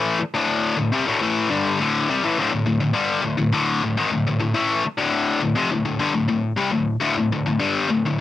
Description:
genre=rock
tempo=103 BPM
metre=4/4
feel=straight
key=unclear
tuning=A4 = 441 Hz
part: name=high-gain distorted guitar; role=solo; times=0.0-8.2 s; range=D2 to A3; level=-19 LUFS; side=left 2 dB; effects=distortion, cassette tape
room=light reverb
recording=home recording on cassette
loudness=-19 LUFS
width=side -13 dB against mid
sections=0.0-8.2 A section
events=none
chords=0.0 D5

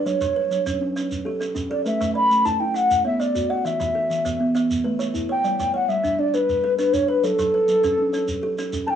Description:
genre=southern african traditional, mbira-style interlocking cycle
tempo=134 BPM (dotted quarters)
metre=12/8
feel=straight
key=unclear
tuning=A4 = 439 Hz
part: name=mellow hollow wooden flute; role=melody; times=0.0-9.0 s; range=A4 to B5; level=-20 LUFS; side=left 1 dB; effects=cassette tape
part: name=buzzing kalimba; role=arpeggios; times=0.0-9.0 s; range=E3 to E5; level=-29 LUFS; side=right 5 dB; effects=cassette tape
part: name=kalimba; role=arpeggios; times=0.0-9.0 s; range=E3 to F#5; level=-26 LUFS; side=equal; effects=cassette tape
part: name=shekere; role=percussion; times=0.1-8.9 s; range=none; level=-34 LUFS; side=right 2 dB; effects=none
room=wet studio reverb, RT60 0.5 s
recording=home recording on cassette, small room ambience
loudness=-19 LUFS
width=side -9 dB against mid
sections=0.0-9.0 A section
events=none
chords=0.1 F#m; 1.9 A5; 2.8 Bm; 3.7 E5; 4.5 A; 5.4 G; 7.2 F#m

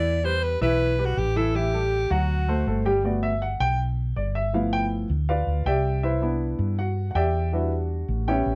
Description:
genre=Afro-Cuban jazz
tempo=160 BPM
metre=4/4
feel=straight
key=G major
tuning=A4 = 441 Hz
part: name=breathy alto saxophone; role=melody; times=0.0-2.9 s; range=F#4 to D5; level=-28 LUFS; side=equal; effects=none
part: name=warm baby grand piano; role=accompaniment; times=0.0-8.6 s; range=E3 to G5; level=-28 LUFS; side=equal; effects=none
part: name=woody fretless electric bass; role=bass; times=0.0-8.6 s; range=G1 to G2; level=-28 LUFS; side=equal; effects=subtle chorus
room=light reverb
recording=none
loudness=-24 LUFS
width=mono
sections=0.0-3.0 A section; 3.0-8.6 B section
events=grand piano solo 3.0-8.6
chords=0.1 Em; 1.5 A5; 2.3 D7; 3.0 Gmaj7; 4.5 G13; 6.0 Cmaj9; 7.5 Em7

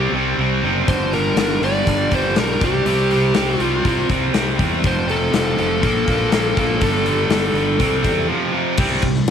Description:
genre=classic rock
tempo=121 BPM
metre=4/4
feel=straight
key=unclear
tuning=A4 = 440 Hz
part: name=fuzz lead guitar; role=melody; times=0.0-8.3 s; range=G4 to D5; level=-22 LUFS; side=left 1 dB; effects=distortion, slapback echo
part: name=distorted electric guitar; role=riff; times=0.0-9.3 s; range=F2 to C4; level=-19 LUFS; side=right 1 dB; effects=distortion
part: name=fuzz fingered electric bass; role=bass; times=0.0-9.3 s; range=F1 to E2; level=-24 LUFS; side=right 1 dB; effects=overdrive
part: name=big rock drum kit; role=drums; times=0.9-9.3 s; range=crash cymbal, hi-hat, kick drum, ride cymbal, snare drum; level=-22 LUFS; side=left 3 dB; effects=none
room=light reverb, small room ambience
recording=1960s-style stereo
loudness=-16 LUFS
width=side -8 dB against mid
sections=0.0-8.8 A section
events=none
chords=0.0 C5; 0.9 Gm; 2.6 C5; 4.8 F; 5.8 Bb5; 6.8 G5; 7.8 C; 8.3 F5; 8.8 C5

